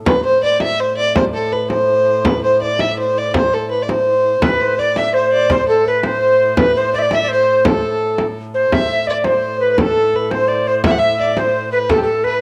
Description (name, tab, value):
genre	medieval dance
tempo	112 BPM (dotted quarters)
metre	6/8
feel	straight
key	A minor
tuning	A4 = 440 Hz
part	warm viola da gamba	drone	0.0-12.4 s	A2	-30 LUFS	equal	cassette tape
part	dark fiddle	melody	0.1-12.4 s	G4 to F#5	-19 LUFS	equal	cassette tape
part	frame drum	percussion	0.1-12.3 s	none	-21 LUFS	equal	none
part	alto recorder	second line	4.4-12.4 s	A4 to E5	-19 LUFS	equal	cassette tape
room	wet spring reverb, RT60 1.3 s, small room reverb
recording	home recording on cassette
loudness	-16 LUFS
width	mono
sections	0.1-8.7 A section; 8.7-12.4 B section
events	speeding up 0.0-12.4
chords	none